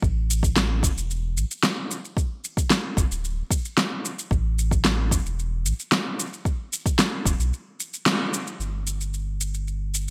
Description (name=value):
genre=sunset chillout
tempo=112 BPM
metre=4/4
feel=straight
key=unclear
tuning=A4 = 440 Hz
part: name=warm sub bass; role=bass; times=0.0-10.1 s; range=D1 to B1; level=-28 LUFS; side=equal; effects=none
part: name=electronic kick drum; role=drums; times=0.0-7.4 s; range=none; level=-26 LUFS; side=equal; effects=none
part: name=electronic shaker and snare drum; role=drums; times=0.0-10.1 s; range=none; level=-26 LUFS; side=equal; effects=gated reverb
room=light reverb, digital ambience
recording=bright 1980s-style digital production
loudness=-25 LUFS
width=mono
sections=0.0-8.6 A section; 8.6-10.1 B section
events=band accent 8.1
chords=none